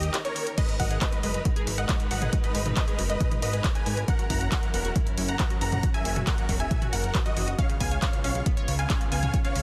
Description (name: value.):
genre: uplifting trance.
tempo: 137 BPM.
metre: 4/4.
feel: straight.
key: G# minor.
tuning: A4 = 440 Hz.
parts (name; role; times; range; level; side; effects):
dense compressed supersaw; melody; 0.0-9.6 s; F#4 to A#5; -35 LUFS; equal; sidechain pumping, tape echo.
unison pluck; second line; 0.0-9.6 s; C#5 to A#5; -41 LUFS; equal; none.
rich studio string section; sustained chords; 0.0-9.6 s; C#3 to B4; -39 LUFS; equal; sidechain pumping.
fat analog bass; bass; 0.0-9.6 s; E1 to D#2; -32 LUFS; equal; sidechain pumping.
punchy analog drum machine; drums; 0.0-9.6 s; crash cymbal, handclaps, hi-hat, toms; -34 LUFS; equal; none.
tight sequenced synth; arpeggios; 0.6-9.6 s; F#2 to C#5; -40 LUFS; equal; chorus, sidechain pumping, tape echo.
electronic kick drum; drums; 0.6-9.4 s; none; -29 LUFS; equal; none.
room: little or no reverb.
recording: dense, heavily limited modern master, faint mains hum.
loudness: -26 LUFS.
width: mono.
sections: 0.0-9.6 A section.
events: break 0.1-0.6.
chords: 0.0 D#; 0.6 G#madd9; 4.1 F#7; 7.6 C#7.